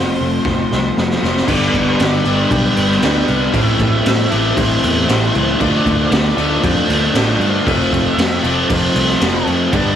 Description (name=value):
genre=rock, shoegaze and dream pop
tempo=116 BPM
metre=4/4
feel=straight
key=G mixolydian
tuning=A4 = 444 Hz
part: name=octave-fuzz lead guitar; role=melody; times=0.0-10.0 s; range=C5 to A5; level=-26 LUFS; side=right 1 dB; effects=distortion
part: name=string machine, violins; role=sustained chords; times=0.0-10.0 s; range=F4 to B5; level=-28 LUFS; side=right 1 dB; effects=none
part: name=electric guitar through a small old amp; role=arpeggios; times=0.0-10.0 s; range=E3 to G4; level=-30 LUFS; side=right 3 dB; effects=none
part: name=overdriven electric guitar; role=riff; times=0.0-10.0 s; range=G2 to F4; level=-18 LUFS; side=left 4 dB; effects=none
part: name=overdriven semi-hollow guitar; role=riff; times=0.0-10.0 s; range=G2 to B4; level=-24 LUFS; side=right 5 dB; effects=none
part: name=vintage muted picked electric bass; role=bass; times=0.0-9.9 s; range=F1 to A2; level=-20 LUFS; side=right 1 dB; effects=none
part: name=raw garage drum kit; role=drums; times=0.5-9.8 s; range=crash cymbal, kick drum, snare drum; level=-17 LUFS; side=equal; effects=none
part: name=distorted electric guitar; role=riff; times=1.5-10.0 s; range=F2 to D4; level=-25 LUFS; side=right 2 dB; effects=none
room=moderate small room reverb, RT60 0.6 s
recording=rough rehearsal-room recording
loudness=-13 LUFS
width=side -9 dB against mid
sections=0.0-1.5 A section; 1.5-10.0 B section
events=drum fill 0.5-1.5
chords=0.0 Fadd9; 1.5 G; 3.5 Am7; 5.6 Dm7; 7.7 Fadd9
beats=0.45 0.97 | 1.49 2.00 2.52 3.03 | 3.55 4.06 4.58 5.09 | 5.61 6.12 6.63 7.15 | 7.67 8.18 8.70 9.21 | 9.73